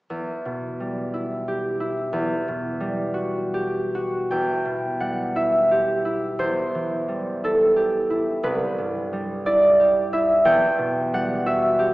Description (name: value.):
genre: classical, solo harp piece.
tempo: 49-61 BPM (dotted quarters).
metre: 6/8.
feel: rubato.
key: E minor.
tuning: A4 = 440 Hz.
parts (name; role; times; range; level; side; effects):
concert harp; solo; 0.1-11.9 s; C2 to G5; -20 LUFS; equal; none.
room: wet concert hall reverb, RT60 2.2 s.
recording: heard from further back in the room, small speaker sound.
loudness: -20 LUFS.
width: side -18 dB against mid.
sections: 0.1-4.3 A section; 4.3-11.9 B section.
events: none.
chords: 0.1 Em; 2.1 Gmaj7/E; 6.4 Am7/E; 8.4 Cmaj7; 10.5 Emadd9.